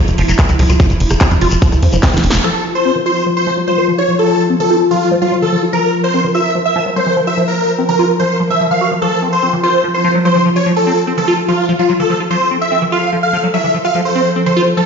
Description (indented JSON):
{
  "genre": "psychedelic trance",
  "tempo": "146 BPM",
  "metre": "4/4",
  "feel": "straight",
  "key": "F major",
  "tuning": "A4 = 440 Hz",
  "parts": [
    { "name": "pulsing gated texture", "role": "sustained chords", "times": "0.0-14.9 s", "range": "F3 to Bb4", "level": "-17 LUFS", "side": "left 1 dB", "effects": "chorus, built-in reverb, sidechain pumping" },
    { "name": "tight sequencer bass", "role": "bass", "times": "0.1-2.4 s", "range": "F1 to F2", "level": "-13 LUFS", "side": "equal", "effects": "none" },
    { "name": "big-room dance drum kit", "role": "drums", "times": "0.1-2.4 s", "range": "handclaps, hi-hat, rim click, snare drum", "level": "-19 LUFS", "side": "equal", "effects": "none" },
    { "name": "shekere", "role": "percussion", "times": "0.1-2.4 s", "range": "none", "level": "-27 LUFS", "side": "left 3 dB", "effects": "none" },
    { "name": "liquid acid bass", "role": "riff", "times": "0.2-14.8 s", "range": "E3 to Gb4", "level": "-18 LUFS", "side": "equal", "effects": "phaser, auto-pan, sidechain pumping, tape echo" },
    { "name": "electronic kick drum", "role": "drums", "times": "0.4-2.1 s", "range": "none", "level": "-12 LUFS", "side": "equal", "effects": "none" },
    { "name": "dense compressed supersaw", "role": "melody", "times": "2.4-14.9 s", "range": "F4 to F5", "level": "-15 LUFS", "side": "equal", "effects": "phaser, sidechain pumping, dub echo" }
  ],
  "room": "moderate digital room reverb, RT60 1.2 s",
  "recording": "played on a big sound system in a bare room, stone room reverb, nothing above 7.5 kHz",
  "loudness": "-11 LUFS",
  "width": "side -6 dB against mid",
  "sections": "0.0-2.4 A section; 2.4-14.9 B section",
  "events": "drum fill 2.0-2.4; band accent 2.3; filter sweep on acid bass 2.4-14.9; filter sweep on synth texture 2.4-14.9",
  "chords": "0.0 F5"
}